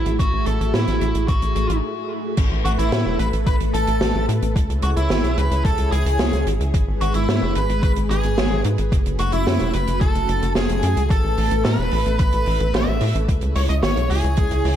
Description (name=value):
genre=synthwave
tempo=110 BPM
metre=4/4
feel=straight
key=unclear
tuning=A4 = 440 Hz
part: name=nasal lead guitar with a parked wah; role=melody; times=0.0-14.8 s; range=E4 to E5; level=-26 LUFS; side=right 1 dB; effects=overdrive, ping-pong delay
part: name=string machine, full ensemble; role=sustained chords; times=0.0-14.8 s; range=G#3 to E5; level=-27 LUFS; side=left 1 dB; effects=ensemble chorus, sidechain pumping
part: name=tight sequencer bass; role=bass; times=0.0-14.8 s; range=E1 to A2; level=-21 LUFS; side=equal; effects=sidechain pumping
part: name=open jazz drum kit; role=drums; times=0.1-14.8 s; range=crash cymbal, hi-hat, snare drum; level=-25 LUFS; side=right 1 dB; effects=gated reverb
part: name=electronic kick drum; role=drums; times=0.2-14.5 s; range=none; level=-20 LUFS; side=equal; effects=overdrive
part: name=airy dreamy lead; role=second line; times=2.6-14.8 s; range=E5 to E6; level=-30 LUFS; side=left 1 dB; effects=chorus, ping-pong delay
room=studio ambience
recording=none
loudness=-17 LUFS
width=side -10 dB against mid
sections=0.0-2.4 A section; 2.4-14.8 B section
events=break 1.8-2.4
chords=0.0 F#m7/A; 2.4 Asus2; 4.6 C#m; 6.7 G#m; 8.9 F#m; 11.1 Asus2; 13.3 C#m